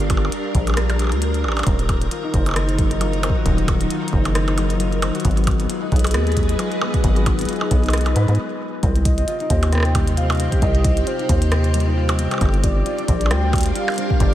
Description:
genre	IDM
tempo	134 BPM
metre	4/4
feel	swing 56% on 16ths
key	unclear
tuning	A4 = 442 Hz
part	soft string machine	sustained chords	0.0-14.3 s	C3 to F5	-26 LUFS	equal	ensemble chorus
part	deep acid bass	bass	0.0-14.3 s	Eb1 to Ab2	-19 LUFS	equal	none
part	glitchy drum kit	drums	0.0-14.3 s	hi-hat, percussion blips, rim click	-27 LUFS	right 1 dB	studio reverb, tape echo
part	electronic kick drum	drums	0.1-14.3 s	none	-20 LUFS	equal	studio reverb
part	concert harp	arpeggios	1.7-14.3 s	Gb3 to C5	-26 LUFS	left 4 dB	vintage 12-bit sampler grit, analog delay
part	warm velvety synth lead	melody	9.1-14.3 s	C5 to G5	-27 LUFS	right 1 dB	chorus, tape echo
room	light reverb, digital ambience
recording	none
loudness	-17 LUFS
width	side -13 dB against mid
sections	0.0-8.8 A section; 8.8-14.3 B section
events	stop 8.4-8.8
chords	0.0 Gm7; 1.7 Ebm; 5.2 Abm; 8.8 Cm; 12.4 Gm7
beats	0.32 0.77 1.22 | 1.67 2.11 2.56 3.01 | 3.46 3.90 4.35 4.80 | 5.25 5.70 6.14 6.59 | 7.04 7.49 7.93 8.38 | 8.83 9.28 9.72 10.17 | 10.62 11.07 11.52 11.96 | 12.41 12.86 13.31 13.76 | 14.20

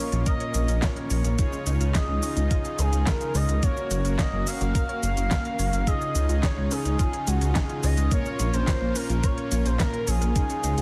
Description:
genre	synthwave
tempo	107 BPM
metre	4/4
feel	straight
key	Bb minor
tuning	A4 = 440 Hz
part	expressive portamento lead	melody	0.0-10.8 s	Gb4 to F5	-33 LUFS	equal	lush chorus, tape echo
part	soft supersaw	sustained chords	0.0-10.8 s	Db3 to Gb4	-37 LUFS	equal	sidechain pumping
part	analog pluck	arpeggios	0.0-10.8 s	Ab3 to Db5	-40 LUFS	equal	none
part	mellow synth brass	stabs	0.0-10.8 s	Bb2 to Bb4	-37 LUFS	equal	chorus
part	dark detuned saw bass	bass	0.1-10.8 s	Gb1 to Db2	-27 LUFS	equal	sidechain pumping
part	pop drum kit	drums	0.1-10.8 s	handclaps, hi-hat, shaker, snare drum	-34 LUFS	equal	none
part	electronic kick drum	drums	0.3-10.5 s	none	-28 LUFS	equal	overdrive
room	light reverb, digital ambience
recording	dense, heavily limited modern master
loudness	-25 LUFS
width	mono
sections	0.0-10.8 A section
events	none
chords	0.0 Bbm; 1.4 Dbadd9; 3.6 Gb; 5.9 Dbadd9; 8.1 Bbm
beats	0.26 0.82 | 1.39 1.95 2.51 3.07 | 3.63 4.19 4.75 5.31 | 5.87 6.43 6.99 7.55 | 8.12 8.68 9.24 9.80 | 10.36

